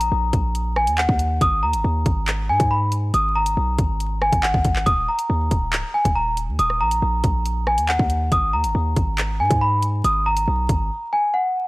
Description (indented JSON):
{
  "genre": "hip hop, drill",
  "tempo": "139 BPM",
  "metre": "4/4",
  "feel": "half-time",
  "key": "Eb minor",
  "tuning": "A4 = 439 Hz",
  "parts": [
    { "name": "celesta", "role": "melody", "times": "0.0-11.7 s", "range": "Gb5 to Eb6", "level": "-21 LUFS", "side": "equal", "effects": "none" },
    { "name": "hard-hitting 808-style bass", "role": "bass", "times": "0.0-10.9 s", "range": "Db1 to Ab2", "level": "-22 LUFS", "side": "equal", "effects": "none" },
    { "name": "drill drum kit", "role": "drums", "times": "0.0-10.8 s", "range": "handclaps, hi-hat, kick drum, rim click", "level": "-23 LUFS", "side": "equal", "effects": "none" }
  ],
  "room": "digital ambience",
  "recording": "dry, gritty hardware recording, vinyl crackle",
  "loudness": "-18 LUFS",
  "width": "side -22 dB against mid",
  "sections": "0.0-11.7 A section",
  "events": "drums muted 10.9-11.7",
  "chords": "0.0 Ebm; 1.4 N.C.; 4.9 Eb5; 8.3 N.C.",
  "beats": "0.12 0.55 0.98 | 1.41 1.84 2.27 2.71 | 3.14 3.57 4.00 4.43 | 4.86 5.30 5.73 6.16 | 6.59 7.02 7.45 7.89 | 8.32 8.75 9.18 9.61 | 10.04 10.48 10.91 11.34"
}